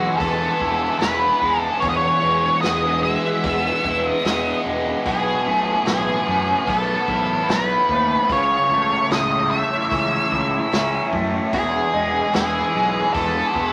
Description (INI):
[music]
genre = psychedelic rock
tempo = 74 BPM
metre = 4/4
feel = straight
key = unclear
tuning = A4 = 440 Hz
[part]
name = octave-fuzz lead guitar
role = melody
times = 0.0-13.7 s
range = G#4 to E5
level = -23 LUFS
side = equal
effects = distortion
[part]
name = soft string machine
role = sustained chords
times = 0.0-13.7 s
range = E4 to B5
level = -31 LUFS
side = equal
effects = phaser, ensemble chorus
[part]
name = fuzz guitar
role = riff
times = 0.0-13.7 s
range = E2 to E4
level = -26 LUFS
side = equal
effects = distortion, phaser
[part]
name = fuzz fingered electric bass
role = bass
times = 0.0-13.7 s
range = E1 to F#2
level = -30 LUFS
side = equal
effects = overdrive
[part]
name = vintage drum kit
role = drums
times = 0.2-13.7 s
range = hi-hat, kick drum, snare drum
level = -29 LUFS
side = equal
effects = none
[sound]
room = wet studio reverb, RT60 0.8 s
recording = vinyl crackle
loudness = -20 LUFS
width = mono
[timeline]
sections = 0.0-13.7 A section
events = none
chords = 0.0 Eadd9; 5.1 B7sus4; 8.3 A/C#; 11.5 Eadd9